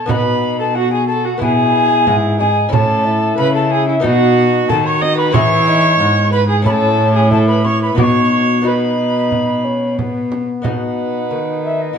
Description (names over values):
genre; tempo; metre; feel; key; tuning
classical, renaissance-style consort dance; 91 BPM; 4/4; straight; B mixolydian; A4 = 437 Hz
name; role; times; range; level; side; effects
mellow alto recorder; melody; 0.0-12.0 s; D#5 to D#6; -18 LUFS; left 2 dB; none
lute; accompaniment; 0.0-12.0 s; G#2 to A4; -22 LUFS; left 4 dB; none
warm viola; second line; 0.1-12.0 s; E4 to D#5; -19 LUFS; right 5 dB; none
dark bassoon; accompaniment; 0.1-12.0 s; B3 to F#4; -21 LUFS; left 2 dB; none
rich cello; bass; 0.1-12.0 s; G#2 to E3; -18 LUFS; equal; none
frame drum; percussion; 0.1-11.0 s; none; -20 LUFS; right 4 dB; none
room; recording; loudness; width
wet stone room reverb, RT60 1.1 s; heard from further back in the room, nothing above 10.7 kHz; -12 LUFS; side -7 dB against mid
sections
0.1-10.7 A section; 10.7-12.0 B section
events
none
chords
0.1 B; 1.4 E/B; 2.7 A; 4.0 B; 5.3 E; 6.7 A; 8.0 B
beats
| 0.10 0.76 1.41 2.07 | 2.73 3.38 4.04 4.69 | 5.34 6.00 6.66 7.32 | 7.98 8.65 9.32 9.99 | 10.65 11.31 11.97